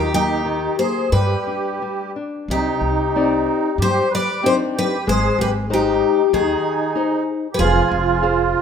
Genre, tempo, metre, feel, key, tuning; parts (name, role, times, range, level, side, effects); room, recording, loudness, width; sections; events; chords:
fado-style ballad; 94 BPM; 4/4; rubato; C harmonic minor; A4 = 440 Hz
picked twelve-string acoustic guitar; melody; 0.0-8.6 s; G4 to D5; -20 LUFS; left 4 dB
musette accordion; second line; 0.0-8.6 s; Eb4 to B4; -22 LUFS; right 7 dB
nylon-string guitar; accompaniment; 0.0-8.6 s; C3 to D5; -24 LUFS; left 3 dB
upright bass; bass; 0.0-8.5 s; F1 to G2; -23 LUFS; equal
moderate recital hall reverb, RT60 1.3 s; minimal, uncompressed stereo recording; -16 LUFS; side -7 dB against mid
0.0-2.5 A section; 2.5-8.6 B section
0.0 Eb; 1.1 G; 2.5 Cmadd9; 5.1 Ab; 7.6 Fm